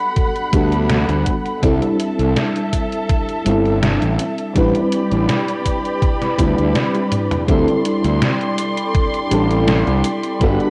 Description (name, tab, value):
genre	vaporwave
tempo	82 BPM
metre	4/4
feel	straight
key	unclear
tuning	A4 = 444 Hz
part	mellow FM electric piano	accompaniment	0.0-10.7 s	G3 to B4	-21 LUFS	equal	ensemble chorus, tape echo
part	dark studio string section	sustained chords	0.0-10.7 s	G3 to C6	-27 LUFS	equal	none
part	detuned 8-bit digital drum machine	drums	0.2-10.7 s	hi-hat, snare drum, toms	-25 LUFS	equal	none
part	electronic kick drum	drums	0.2-10.6 s	none	-21 LUFS	equal	none
part	fuzz fingered electric bass	bass	0.5-10.6 s	G1 to D2	-22 LUFS	equal	overdrive
room	moderate plate reverb, RT60 2.0 s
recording	echo-heavy mix, cassette tape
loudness	-18 LUFS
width	mono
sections	0.0-7.5 A section; 7.5-10.7 B section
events	kick drops out 6.8-7.5; drum fill 7.1-7.5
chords	0.0 Gmaj7; 1.6 C6; 4.6 Am11 (rootless); 7.5 D7sus4